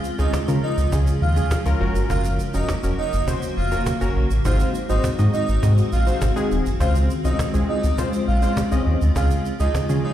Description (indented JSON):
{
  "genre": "dance-pop",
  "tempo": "102 BPM",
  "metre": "4/4",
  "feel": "straight",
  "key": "Db major",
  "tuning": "A4 = 438 Hz",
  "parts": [
    { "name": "warm analog keys", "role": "accompaniment", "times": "0.0-10.1 s", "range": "Ab3 to Eb5", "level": "-26 LUFS", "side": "left 2 dB", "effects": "chorus" },
    { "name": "granular cloud pad", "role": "sustained chords", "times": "0.0-10.1 s", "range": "Db3 to Gb4", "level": "-27 LUFS", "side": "equal", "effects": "built-in reverb" },
    { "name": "cajon", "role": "drums", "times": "0.0-10.1 s", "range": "none", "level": "-27 LUFS", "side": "equal", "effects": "none" },
    { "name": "tube shaker", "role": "percussion", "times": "0.0-10.0 s", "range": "none", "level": "-40 LUFS", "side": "right 9 dB", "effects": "none" },
    { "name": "airy dreamy lead", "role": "melody", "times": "0.2-10.1 s", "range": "Eb5 to F5", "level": "-28 LUFS", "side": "right 2 dB", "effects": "chorus, digital delay" },
    { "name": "sub bass with octave", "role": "bass", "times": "0.2-10.0 s", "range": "Eb1 to Db3", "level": "-20 LUFS", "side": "equal", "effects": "none" }
  ],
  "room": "digital ambience",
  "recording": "played on a big sound system in a bare room, stone room reverb",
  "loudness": "-18 LUFS",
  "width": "side -11 dB against mid",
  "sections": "0.0-10.1 A section",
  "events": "none",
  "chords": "0.0 Db; 1.8 Gb; 4.5 Ab7; 6.8 Dbmaj7; 9.2 Db"
}